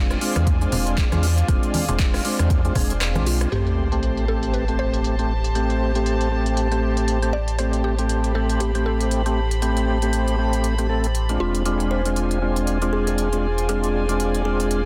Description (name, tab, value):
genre	deep house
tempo	118 BPM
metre	4/4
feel	swing 57% on 16ths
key	A minor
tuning	A4 = 442 Hz
part	warm analog pad	sustained chords	0.0-14.9 s	C4 to A5	-36 LUFS	equal	chorus, sidechain pumping
part	overdriven tonewheel organ	stabs	0.0-14.8 s	G#3 to A4	-27 LUFS	equal	chorus vibrato, slow rotary speaker, sidechain pumping, low-pass filter, digital delay
part	sub bass with octave	bass	0.0-14.9 s	E1 to E2	-25 LUFS	equal	sidechain pumping
part	warm studio string section	texture	0.0-14.9 s	F4 to B5	-34 LUFS	equal	sidechain pumping
part	deep house drum kit	drums	0.1-14.8 s	handclaps, hi-hat, rim click	-32 LUFS	equal	low-pass filter on hats, low-pass filter on snare
part	congas	percussion	0.4-3.2 s	none	-30 LUFS	equal	none
part	electronic kick drum	drums	0.5-2.9 s	none	-23 LUFS	equal	none
part	mallet-like synth pluck	melody	3.3-11.5 s	F4 to D5	-34 LUFS	equal	chorus, phaser, tape echo
part	sub drop	sound effects	3.5-5.6 s	none	-29 LUFS	equal	none
part	kalimba	melody	11.9-14.7 s	G#4 to C5	-30 LUFS	equal	tape echo
room	light reverb, digital ambience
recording	dense, heavily limited modern master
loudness	-21 LUFS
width	mono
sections	0.0-3.5 A section; 3.5-14.9 B section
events	drum fill 2.8-3.5; kick drops out 3.0-3.5; band accent 3.4; impact 3.5-5.6; filter sweep on tonewheel organ 3.5-14.9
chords	0.0 E7b9b13; 3.5 Am7; 11.4 E7b9b13